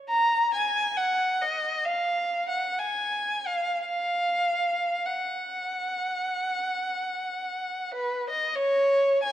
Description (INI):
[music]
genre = classical, free, expressive piece for unaccompanied violin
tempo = 41-68 BPM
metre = 4/4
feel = rubato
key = F# major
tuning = A4 = 439 Hz
[part]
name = warm violin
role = solo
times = 0.1-9.3 s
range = B4 to A#5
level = -24 LUFS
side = equal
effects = none
[sound]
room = moderate scoring stage reverb, RT60 1.8 s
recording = dark, warm production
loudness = -25 LUFS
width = side -12 dB against mid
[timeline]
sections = 0.0-8.6 A section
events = none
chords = none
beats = | 0.10 0.98 1.87 2.80 | 3.87 5.06 6.22 7.31 | 8.56